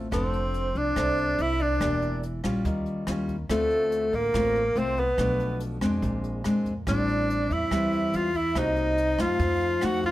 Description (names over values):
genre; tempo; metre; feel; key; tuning
bossa nova; 142 BPM; 4/4; straight; F major; A4 = 440 Hz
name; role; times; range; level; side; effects
nylon-string guitar; accompaniment; 0.0-10.1 s; A2 to A4; -29 LUFS; left 1 dB; none
upright bass; bass; 0.0-10.1 s; E1 to Gb2; -31 LUFS; equal; none
breathy tenor saxophone; melody; 0.1-10.1 s; A3 to Gb4; -25 LUFS; left 1 dB; none
breathy silver concert flute; second line; 0.1-10.1 s; A4 to Gb5; -34 LUFS; right 5 dB; none
jazz brush drum kit; drums; 0.1-10.1 s; hi-hat, kick drum, rim click; -36 LUFS; equal; none
room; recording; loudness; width
light reverb; none; -23 LUFS; side -15 dB against mid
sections
0.1-10.1 A section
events
none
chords
0.1 F6; 1.8 Em7b5; 2.7 Eb9; 3.5 Dm7; 5.2 Bm7b5; 6.0 Bb9; 6.9 Am7; 8.6 Cm7b5; 9.4 F7b9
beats
| 0.12 0.54 0.96 1.39 | 1.81 2.23 2.65 3.08 | 3.50 3.92 4.34 4.76 | 5.19 5.61 6.03 6.45 | 6.87 7.30 7.72 8.14 | 8.56 8.98 9.40 9.83